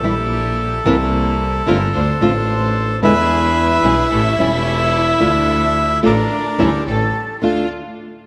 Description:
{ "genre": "tango", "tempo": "110 BPM", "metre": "4/4", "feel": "rubato", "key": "D minor", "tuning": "A4 = 440 Hz", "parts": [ { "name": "bandoneon", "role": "melody", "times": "0.0-7.7 s", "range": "A4 to F5", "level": "-21 LUFS", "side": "equal", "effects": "none" }, { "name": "flamenco guitar", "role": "accompaniment", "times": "0.0-7.7 s", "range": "B2 to F4", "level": "-22 LUFS", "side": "equal", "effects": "none" }, { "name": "rich chamber string section", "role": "stabs", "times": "0.0-7.7 s", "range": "F3 to C5", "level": "-29 LUFS", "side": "equal", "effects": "none" }, { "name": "clear double bass", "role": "bass", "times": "0.0-7.7 s", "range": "E1 to E2", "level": "-22 LUFS", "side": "equal", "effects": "none" }, { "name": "warm studio violin section", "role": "second line", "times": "3.0-7.7 s", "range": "D4 to F4", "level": "-25 LUFS", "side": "equal", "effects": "none" }, { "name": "breathy concert flute", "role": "second line", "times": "6.6-7.7 s", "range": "G4 to A4", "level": "-28 LUFS", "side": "equal", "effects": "none" } ], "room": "wet concert hall reverb, RT60 2.1 s", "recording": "none", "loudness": "-16 LUFS", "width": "mono", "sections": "0.0-7.4 A section", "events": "none", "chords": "0.0 Edim; 0.9 C7; 1.9 Dm7; 3.0 E7; 4.1 A7; 5.2 Dm; 6.9 A7; 7.4 Dm", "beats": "0.31 | 0.86 1.40 1.95 2.49 | 3.03 3.57 4.12 4.66 | 5.21 5.76 6.31 6.87 | 7.42" }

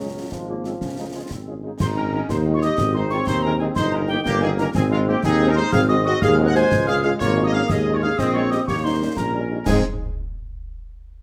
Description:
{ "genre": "military-style march for wind band", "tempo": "122 BPM (dotted quarters)", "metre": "6/8", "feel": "straight", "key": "Ab major", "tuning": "A4 = 441 Hz", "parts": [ { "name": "dark trumpet section", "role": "melody", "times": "0.0-9.8 s", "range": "F4 to Ab5", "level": "-30 LUFS", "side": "equal", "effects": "none" }, { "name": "clear euphonium", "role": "second line", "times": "0.0-1.3 s", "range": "F3 to Gb3", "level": "-35 LUFS", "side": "equal", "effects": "none" }, { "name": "mellow woodwind section", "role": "second line", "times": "0.0-9.8 s", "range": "Ab3 to C5", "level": "-29 LUFS", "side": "equal", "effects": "none" }, { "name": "mellow French horn section", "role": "accompaniment", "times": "0.0-9.8 s", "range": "Eb3 to Gb4", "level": "-31 LUFS", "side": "equal", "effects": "none" }, { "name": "mellow tuba", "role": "bass", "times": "0.0-9.8 s", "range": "G1 to Ab2", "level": "-25 LUFS", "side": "equal", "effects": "none" }, { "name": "concert snare drum, concert bass drum and clash cymbals", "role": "drums", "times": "0.3-9.8 s", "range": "none", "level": "-30 LUFS", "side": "equal", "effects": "none" }, { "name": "mellow piccolo", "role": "second line", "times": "1.8-9.8 s", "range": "F5 to Ab6", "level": "-30 LUFS", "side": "equal", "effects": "none" }, { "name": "warm trombone section", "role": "sustained chords", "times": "1.8-9.8 s", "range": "G3 to Eb4", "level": "-28 LUFS", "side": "equal", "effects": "none" } ], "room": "moderate large studio reverb, RT60 0.9 s", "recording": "none", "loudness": "-20 LUFS", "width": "mono", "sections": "0.0-1.8 A section; 1.8-9.7 B section", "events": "none", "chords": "0.0 Db; 1.8 Ab; 3.8 Eb/G; 4.8 Ab; 5.7 Ab7; 6.7 Db; 7.7 Eb7sus4; 8.7 Eb7; 9.7 Ab", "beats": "0.32 | 0.82 1.31 | 1.80 2.29 | 2.79 3.28 | 3.77 4.26 | 4.75 5.24 | 5.73 6.22 | 6.72 7.21 | 7.70 8.19 | 8.68 9.17 | 9.66" }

